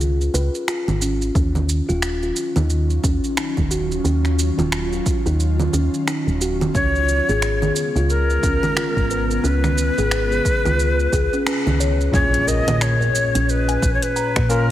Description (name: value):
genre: organic downtempo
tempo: 89 BPM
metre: 4/4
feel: swing 60% on 16ths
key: Eb minor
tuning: A4 = 440 Hz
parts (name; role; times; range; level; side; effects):
- kalimba; arpeggios; 0.0-14.7 s; Db4 to Bb5; -24 LUFS; left 1 dB; low-pass filter, tape echo
- woody FM bass; bass; 0.0-14.7 s; Eb1 to Bb2; -20 LUFS; equal; none
- deep house drum kit; drums; 0.0-14.7 s; congas, finger snaps, hi-hat, shaker; -25 LUFS; right 2 dB; overdrive, small room reverb
- ethereal airy pad; sustained chords; 2.2-12.1 s; Db3 to F4; -29 LUFS; equal; ensemble chorus, built-in reverb, phaser, sidechain pumping
- electronic kick drum; drums; 1.4-14.5 s; none; -23 LUFS; equal; overdrive, small room reverb
- breathy Native American-style cedar flute; melody; 6.7-14.7 s; Bb4 to Eb5; -22 LUFS; left 1 dB; tape echo
- bell-like tine electric piano; accompaniment; 12.1-14.7 s; Bb2 to Bb4; -25 LUFS; left 2 dB; sidechain pumping
- impact; sound effects; 12.1-14.7 s; none; -29 LUFS; equal; none
room: light reverb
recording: heavily compressed radio sound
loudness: -17 LUFS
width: side -13 dB against mid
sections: 0.0-12.1 A section; 12.1-14.7 B section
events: kick drops out 11.5-12.1; band accent 11.5-11.8; impact 12.1-14.7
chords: 0.0 Db7; 1.4 Ebm9; 6.7 Db7; 12.1 Bbm7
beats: 0.00 0.68 | 1.35 2.03 2.70 3.38 | 4.05 4.72 5.40 6.07 | 6.75 7.42 8.09 8.77 | 9.44 10.12 10.79 11.46 | 12.14 12.81 13.49 14.16